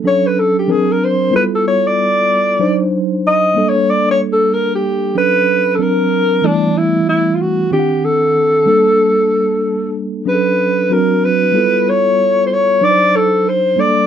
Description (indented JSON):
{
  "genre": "hip hop",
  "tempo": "94 BPM",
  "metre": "4/4",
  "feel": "swing 60% on 16ths",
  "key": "D major",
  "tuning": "A4 = 440 Hz",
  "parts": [
    { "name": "mellow tine electric piano", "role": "accompaniment", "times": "0.0-14.1 s", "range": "Eb3 to F#5", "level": "-16 LUFS", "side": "equal", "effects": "medium stereo tremolo" },
    { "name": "breathy alto saxophone", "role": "melody", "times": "0.1-14.1 s", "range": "D4 to Eb5", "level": "-13 LUFS", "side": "equal", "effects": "none" }
  ],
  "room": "moderate small room reverb, RT60 0.5 s",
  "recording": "dark, warm production",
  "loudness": "-12 LUFS",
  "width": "side -9 dB against mid",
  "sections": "0.0-5.2 A section; 5.2-14.1 B section",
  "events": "alto saxophone solo 0.0-5.2",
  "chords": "0.1 Dmaj7; 0.7 Daug7; 1.3 G13; 2.6 D7b9; 3.6 Gmadd9; 5.2 Dmaj7; 5.8 Daug7; 6.4 G69; 7.7 D7b9; 8.7 Gmadd9; 10.3 Dmaj7; 10.9 Daug7; 11.5 G13; 12.8 D7b9"
}